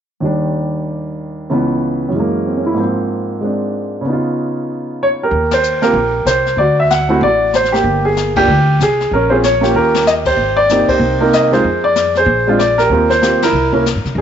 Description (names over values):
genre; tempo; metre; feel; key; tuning
jazz piano trio; 190 BPM; 4/4; swing 60% on 8ths; Eb major; A4 = 439 Hz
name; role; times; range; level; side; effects
warm concert grand piano; melody; 0.2-14.2 s; Db2 to F#5; -13 LUFS; right 1 dB; none
upright bass; bass; 5.3-14.2 s; G1 to C3; -19 LUFS; left 1 dB; none
jazz brush drum kit; drums; 5.3-14.2 s; brushed snare drum, crash cymbal, hi-hat, kick drum, ride cymbal, snare drum; -24 LUFS; left 8 dB; none
room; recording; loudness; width
light reverb, small room ambience; 1960s-style stereo, nothing above 7.8 kHz; -12 LUFS; side -8 dB against mid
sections
0.2-5.3 A section; 5.3-14.2 B section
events
band accent 5.5, 8.3, 10.9, 13.4; drum fill 9.7-10.1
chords
0.2 Ebmaj7; 1.5 Dbm7; 2.1 Gb9; 2.8 Ab69; 4.0 Db9; 5.3 Eb6; 6.6 D7; 7.8 Gm; 9.1 Bbm; 9.7 Eb7; 10.4 Abmaj7; 11.6 Fm; 12.3 Bb7; 12.9 Eb69; 13.5 C7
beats
| 0.23 0.55 0.87 1.18 | 1.50 1.82 2.14 2.46 | 2.77 3.09 3.41 3.73 | 4.04 4.36 4.68 5.00 | 5.31 5.63 5.95 6.26 | 6.58 6.90 7.21 7.53 | 7.84 8.16 8.48 8.79 | 9.11 9.43 9.74 10.06 | 10.38 10.69 11.01 11.33 | 11.64 11.96 12.28 12.59 | 12.91 13.22 13.54 13.86 | 14.17